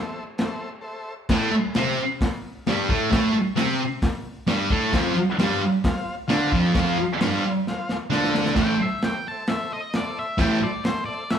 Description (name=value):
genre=garage rock duo or trio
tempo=132 BPM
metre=4/4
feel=straight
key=A minor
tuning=A4 = 441 Hz
part: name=combo organ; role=sustained chords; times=0.0-1.1, 4.9-11.4 s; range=F4 to F5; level=-33 LUFS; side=left 2 dB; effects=none
part: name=crunchy breakbeat drum kit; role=drums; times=0.4-11.4 s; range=crash cymbal, hi-hat, kick drum, snare drum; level=-26 LUFS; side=equal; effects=none
part: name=thick fuzz guitar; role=riff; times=1.3-10.6 s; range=F2 to D4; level=-22 LUFS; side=right 1 dB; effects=distortion
part: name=octave-fuzz lead guitar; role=melody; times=8.6-11.4 s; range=C5 to A5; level=-28 LUFS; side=left 1 dB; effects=distortion
room=wet large studio reverb, RT60 1.1 s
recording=band playing live in one room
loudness=-21 LUFS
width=side -8 dB against mid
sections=0.0-1.3 A section; 1.3-8.6 B section; 8.6-11.4 C section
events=break 0.8-1.3; drum fill 7.7-8.6; lead electric guitar solo 8.6-11.4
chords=0.0 Am; 4.9 F5; 8.6 Am